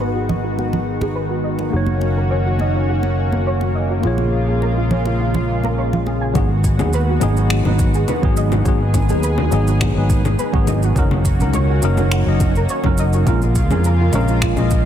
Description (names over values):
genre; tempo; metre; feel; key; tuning
sunset chillout; 104 BPM; 4/4; straight; G# dorian; A4 = 436 Hz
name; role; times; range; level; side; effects
tine electric piano; accompaniment; 0.0-14.8 s; F#3 to D#5; -24 LUFS; moving between left 5 dB and right 2 dB; slow stereo tremolo, auto-pan, low-pass filter, ping-pong delay
lush unison pad; sustained chords; 0.0-14.9 s; C#3 to G#4; -23 LUFS; equal; chorus, vintage 12-bit sampler grit
soft round pluck; arpeggios; 0.0-14.6 s; E#4 to G#5; -26 LUFS; right 2 dB; ensemble chorus, ping-pong delay
sustaining fretless electric bass; bass; 0.0-14.9 s; F#1 to E#2; -18 LUFS; equal; none
electronic shaker, congas and finger snaps; drums; 0.0-14.8 s; none; -24 LUFS; left 2 dB; overdrive, soft clipping on snare, low-pass filter on snare, low-pass filter on perc, low-pass filter on room
congas; percussion; 0.0-6.2 s; none; -26 LUFS; right 2 dB; none
electronic kick drum; drums; 6.4-14.8 s; none; -19 LUFS; equal; overdrive
room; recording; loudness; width
light reverb; dense, heavily limited modern master; -15 LUFS; side -10 dB against mid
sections
0.0-6.4 A section; 6.4-14.9 B section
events
filter sweep on tine electric piano 0.0-6.4; filter sweep on synth pluck 0.0-6.4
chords
0.0 G#m7; 1.7 D#m7/F#; 4.0 A#m7; 6.4 G#m7; 11.0 D#m7/F#; 13.3 A#m7